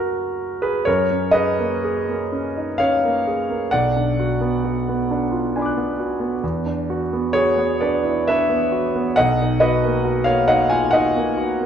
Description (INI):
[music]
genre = classical, impressionist solo piano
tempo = 65 BPM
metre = 3/4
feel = uneven beats, rubato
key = F# major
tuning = A4 = 440 Hz
[part]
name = clear concert grand piano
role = solo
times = 0.0-11.7 s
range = B1 to F#6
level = -18 LUFS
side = equal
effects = none
[sound]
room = moderate recital hall reverb, RT60 1.5 s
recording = dark, warm production, nothing above 10.5 kHz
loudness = -17 LUFS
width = side -8 dB against mid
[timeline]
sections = 0.9-11.7 A section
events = none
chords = 0.0 F#add9; 3.7 Bm6; 6.4 E9; 9.2 Bmaj7